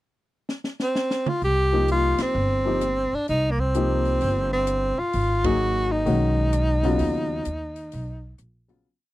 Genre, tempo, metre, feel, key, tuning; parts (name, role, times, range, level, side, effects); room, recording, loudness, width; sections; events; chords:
modal jazz; 129 BPM; 4/4; swing 66% on 8ths; A4 = 440 Hz
compact cocktail drum kit; drums; 0.5-8.8 s; hi-hat, kick drum, ride cymbal, rim click, snare drum, toms; -31 LUFS; equal
breathy tenor saxophone; melody; 0.8-8.4 s; Bb3 to G4; -24 LUFS; equal
upright bass; bass; 1.4-8.8 s; G1 to Eb2; -25 LUFS; equal
warm baby grand piano; accompaniment; 1.7-8.9 s; Db3 to Ab4; -26 LUFS; left 4 dB
little or no reverb; dry, close 1970s-style studio recording; -20 LUFS; side -16 dB against mid
0.0-1.4 pickup bar; 1.4-8.9 A section
drum fill 0.5-1.4; band accent 2.1, 5.4; fade-out 7.0-8.9
0.0 N.C.; 1.4 Cm7; 5.1 Abm11